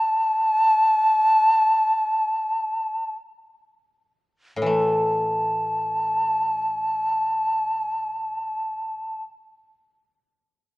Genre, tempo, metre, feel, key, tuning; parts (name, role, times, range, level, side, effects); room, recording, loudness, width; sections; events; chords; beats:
japanese traditional, Japanese chamber music; free time; A4 = 440 Hz
breathy long shakuhachi; melody; 0.0-9.2 s; A5; -20 LUFS; equal
koto; accompaniment; 4.6-9.3 s; A2 to A3; -24 LUFS; left 1 dB
moderate recital hall reverb, RT60 1.6 s; worn, warbling old tape, cassette tape, warbly pitch drift; -20 LUFS; side -21 dB against mid
0.0-4.7 A section; 4.7-10.7 B section
slowing down 0.0-4.7
free time